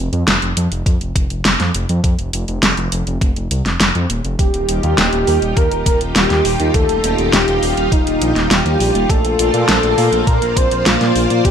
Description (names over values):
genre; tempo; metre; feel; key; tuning
synthwave; 102 BPM; 4/4; straight; unclear; A4 = 440 Hz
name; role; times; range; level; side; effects
dark detuned saw bass; bass; 0.0-11.5 s; Eb1 to Bb2; -19 LUFS; equal; sidechain pumping
pop drum kit; drums; 0.1-11.5 s; hi-hat, snare drum; -17 LUFS; equal; small room ambience
electronic kick drum; drums; 0.9-11.5 s; none; -16 LUFS; equal; small room ambience
wide unison lead; melody; 4.4-11.5 s; Eb4 to C5; -17 LUFS; equal; digital delay
string machine, full ensemble; sustained chords; 4.4-11.5 s; Bb3 to D5; -21 LUFS; equal; ensemble chorus, sidechain pumping
room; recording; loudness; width
light reverb; bright 1980s-style digital production; -13 LUFS; side -8 dB against mid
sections
0.0-11.5 A section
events
none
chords
0.0 F5; 4.4 Ebadd9; 9.1 Bbadd9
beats
0.27 0.86 1.45 | 2.04 2.63 3.21 3.80 | 4.39 4.98 5.57 6.16 | 6.74 7.33 7.92 8.51 | 9.10 9.69 10.27 10.86 | 11.45